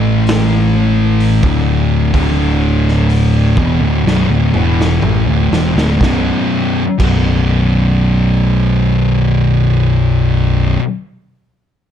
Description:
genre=stoner and doom metal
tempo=62 BPM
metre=4/4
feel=straight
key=B minor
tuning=A4 = 439 Hz
part: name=thick fuzz guitar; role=riff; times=0.0-10.8 s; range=B1 to A3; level=-14 LUFS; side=left 6 dB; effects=distortion
part: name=thick fuzz guitar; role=riff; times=0.0-10.8 s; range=B1 to A3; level=-16 LUFS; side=right 9 dB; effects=distortion
part: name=overdriven picked electric bass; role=bass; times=0.0-10.7 s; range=B0 to A1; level=-16 LUFS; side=equal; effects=none
part: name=raw garage drum kit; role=drums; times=0.3-7.3 s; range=crash cymbal, hi-hat, kick drum, snare drum, toms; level=-20 LUFS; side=equal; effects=none
room=small room ambience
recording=dark, warm production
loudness=-11 LUFS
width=side -9 dB against mid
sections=0.0-6.0 A section; 6.0-10.0 B section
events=slowing down 0.0-6.0; drum fill 4.0-6.0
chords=0.0 A5; 1.4 D5; 3.6 Bm; 6.0 B5

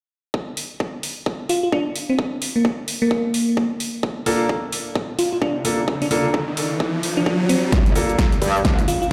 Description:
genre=bass house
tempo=130 BPM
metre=4/4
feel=swing 60% on 16ths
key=unclear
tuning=A4 = 440 Hz
part: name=electronic kick drum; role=drums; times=0.3-8.8 s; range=none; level=-26 LUFS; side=equal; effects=high-pass filter on kick, high-pass filter on room
part: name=big-room dance drum kit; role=drums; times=0.6-9.1 s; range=cabasa, hi-hat, snare drum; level=-28 LUFS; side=equal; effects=none
part: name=bell-like FM electric piano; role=melody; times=1.5-9.1 s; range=Bb3 to F4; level=-24 LUFS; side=equal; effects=chorus, phaser, digital delay
part: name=riser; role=sound effects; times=5.1-9.1 s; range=none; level=-28 LUFS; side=equal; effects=none
part: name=warm grand piano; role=stabs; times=4.3-8.1 s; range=Bb3 to A4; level=-26 LUFS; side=equal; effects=sidechain pumping, low-pass filter, digital delay
part: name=metallic wobble bass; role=bass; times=7.7-8.9 s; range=G1 to G2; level=-24 LUFS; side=equal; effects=chorus, sidechain pumping, high-pass filter
room=moderate plate reverb, RT60 1.9 s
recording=played on a big sound system in a bare room, large studio reverb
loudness=-21 LUFS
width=mono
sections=0.3-7.7 A section; 7.7-9.1 B section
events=riser 5.1-7.7, 7.7-9.1; build-up 7.7-9.1; drum fill 7.7-9.1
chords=0.3 Bbmaj7; 7.7 Gm7

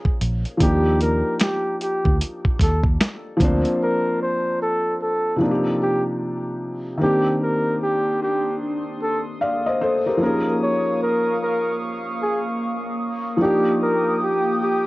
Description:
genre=lo-fi hip hop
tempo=75 BPM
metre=4/4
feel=swing 61% on 16ths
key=C minor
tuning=A4 = 440 Hz
part: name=felt-muted upright piano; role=accompaniment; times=0.0-14.9 s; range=C3 to F5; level=-23 LUFS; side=left 1 dB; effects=cassette tape, low-pass filter
part: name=dusty soul sampler-style drum kit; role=drums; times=0.0-3.8 s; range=finger snaps, hi-hat, kick drum, snare drum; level=-20 LUFS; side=equal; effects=vintage 12-bit sampler grit
part: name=vintage muted fingered electric bass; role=bass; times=0.2-3.6 s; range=Bb1 to Eb2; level=-21 LUFS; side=equal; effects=none
part: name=trumpet with bucket mute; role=melody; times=0.6-14.9 s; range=G4 to Db5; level=-23 LUFS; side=equal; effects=low-pass filter, cassette tape
part: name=warbly tape-like pad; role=sustained chords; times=7.7-14.9 s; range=Bb3 to Eb6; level=-27 LUFS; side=equal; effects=chorus, built-in reverb, phaser, low-pass filter, cassette tape
room=light reverb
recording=home recording on cassette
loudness=-19 LUFS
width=side -20 dB against mid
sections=0.0-7.0 A section; 7.0-14.9 B section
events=break 3.8-7.0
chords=0.0 Db69; 0.6 Ebmaj7; 3.4 Bbadd9/D; 5.4 Cm11; 7.0 Cm9; 10.2 Db69; 13.4 Ebmaj7

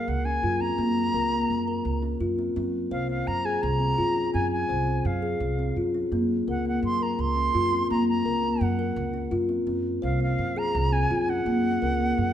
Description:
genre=contemporary instrumental, chamber music in an uneven meter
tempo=168 BPM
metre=5/4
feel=straight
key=Gb lydian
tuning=A4 = 441 Hz
part: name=bright reedy jazz flute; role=melody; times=0.0-12.3 s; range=F5 to C6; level=-28 LUFS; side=right 1 dB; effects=none
part: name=kalimba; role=arpeggios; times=0.0-12.3 s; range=Bb3 to C5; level=-26 LUFS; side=left 1 dB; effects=none
part: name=upright bass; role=bass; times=0.1-12.3 s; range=C2 to Gb2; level=-30 LUFS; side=right 2 dB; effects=none
room=moderate recital hall reverb, RT60 1.2 s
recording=minimal, uncompressed stereo recording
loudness=-23 LUFS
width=side -10 dB against mid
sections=0.0-12.3 A section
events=none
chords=0.0 Gb; 2.6 Fm; 6.1 Gb; 9.7 Fm; 11.5 Gb

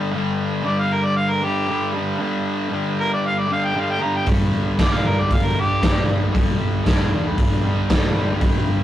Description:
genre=garage rock duo or trio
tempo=116 BPM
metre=4/4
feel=straight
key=unclear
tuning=A4 = 439 Hz
part: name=fuzz guitar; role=riff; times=0.0-8.8 s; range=G2 to G3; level=-22 LUFS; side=left 1 dB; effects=distortion
part: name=mellow harmonica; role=melody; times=0.7-6.1 s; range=G4 to Bb5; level=-22 LUFS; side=equal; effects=overdrive
part: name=hollow-body short-scale picked electric bass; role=bass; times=4.3-8.8 s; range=G1 to G2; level=-23 LUFS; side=equal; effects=none
part: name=raw garage drum kit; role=drums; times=4.3-8.5 s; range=hi-hat, kick drum, snare drum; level=-20 LUFS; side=equal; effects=none
room=light reverb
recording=rough rehearsal-room recording, warm saturation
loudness=-18 LUFS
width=side -12 dB against mid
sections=0.0-8.8 A section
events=none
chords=0.0 G5

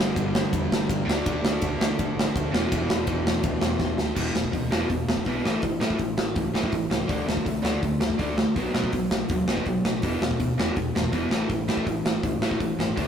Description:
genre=punk rock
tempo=164 BPM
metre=4/4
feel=straight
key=E minor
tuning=A4 = 440 Hz
part: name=biting overdriven guitar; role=riff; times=0.0-13.1 s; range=E2 to D4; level=-27 LUFS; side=equal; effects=none
part: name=overdriven picked electric bass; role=bass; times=0.0-13.1 s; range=E1 to D3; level=-34 LUFS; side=equal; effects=none
part: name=big rock drum kit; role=drums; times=0.2-13.1 s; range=crash cymbal, hi-hat, kick drum, ride cymbal, snare drum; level=-25 LUFS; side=equal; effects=none
room=light reverb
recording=rough rehearsal-room recording, tube saturation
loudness=-22 LUFS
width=side -8 dB against mid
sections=0.0-4.2 A section; 4.2-13.1 B section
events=drum fill 3.8-4.2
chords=0.0 G5; 1.1 D5; 2.5 E5; 5.4 A; 7.1 D5; 8.6 B5; 10.0 E5; 11.3 A5

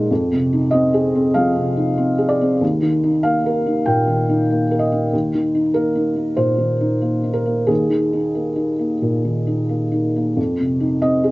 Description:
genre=neoclassical minimalist piano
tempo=88-96 BPM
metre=4/4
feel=rubato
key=Eb major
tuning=A4 = 440 Hz
part: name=felt-muted upright piano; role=solo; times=0.0-11.3 s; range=Eb2 to G5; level=-16 LUFS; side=equal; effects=none
room=little or no reverb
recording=recorded outdoors, with no room sound, nothing above 7.6 kHz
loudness=-16 LUFS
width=side -20 dB against mid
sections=0.0-10.4 A section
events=none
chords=0.1 Fm7; 2.6 Eb; 10.4 F7(no3)

